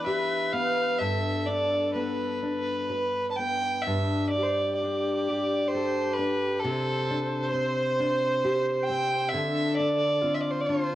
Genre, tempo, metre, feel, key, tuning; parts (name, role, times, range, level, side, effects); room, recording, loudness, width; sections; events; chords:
celtic folk, Celtic slow air; 62-68 BPM; 3/4; rubato; A4 = 440 Hz
warm fiddle; melody; 0.0-10.9 s; A4 to A5; -27 LUFS; right 1 dB
rich viola; second line; 0.0-10.9 s; F4 to C5; -34 LUFS; left 2 dB; cassette tape
nylon-string guitar; accompaniment; 0.0-10.9 s; G2 to B4; -29 LUFS; left 1 dB; cassette tape
light reverb; home recording on cassette; -24 LUFS; side -13 dB against mid
0.0-10.9 A section
0.0 Em7; 1.0 G; 3.9 Gsus2; 6.6 Csus2; 9.3 Dm7